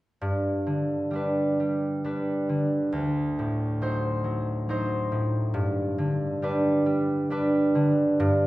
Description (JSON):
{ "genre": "classical, solo harp piece", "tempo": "68 BPM", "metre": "3/4", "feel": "rubato", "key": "G major", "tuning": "A4 = 440 Hz", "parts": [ { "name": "concert harp", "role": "solo", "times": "0.2-8.5 s", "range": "D2 to C5", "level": "-23 LUFS", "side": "equal", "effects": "none" } ], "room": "wet recital hall reverb, RT60 1.5 s", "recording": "recorded in a church or concert hall", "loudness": "-24 LUFS", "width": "side -17 dB against mid", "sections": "0.2-8.5 A section", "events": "none", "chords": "0.2 G; 2.9 D7b9; 5.5 G" }